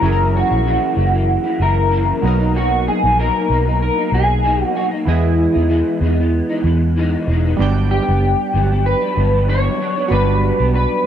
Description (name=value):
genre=indie pop, bedroom pop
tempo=95 BPM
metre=4/4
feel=swing 55% on 16ths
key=unclear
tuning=A4 = 440 Hz
part: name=electric guitar through a small old amp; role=melody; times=0.0-11.1 s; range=E4 to C#5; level=-18 LUFS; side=left 1 dB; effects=analog chorus, tape echo
part: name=electric guitar through a small old amp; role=accompaniment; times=0.0-11.1 s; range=F#2 to E4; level=-23 LUFS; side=left 3 dB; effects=ensemble chorus, vibrato effect
part: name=warm analog keys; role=accompaniment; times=0.0-11.1 s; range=E3 to G5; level=-24 LUFS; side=right 7 dB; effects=chorus, cassette tape
part: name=vintage muted fingered electric bass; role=bass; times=0.0-10.9 s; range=E1 to E2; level=-17 LUFS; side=equal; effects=none
room=digital ambience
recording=dry, close 1970s-style studio recording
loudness=-14 LUFS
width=side -9 dB against mid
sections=0.0-7.6 A section; 7.6-11.1 B section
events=none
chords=0.0 F#7; 2.2 Bmaj7; 5.1 Emaj7; 7.6 Gmaj7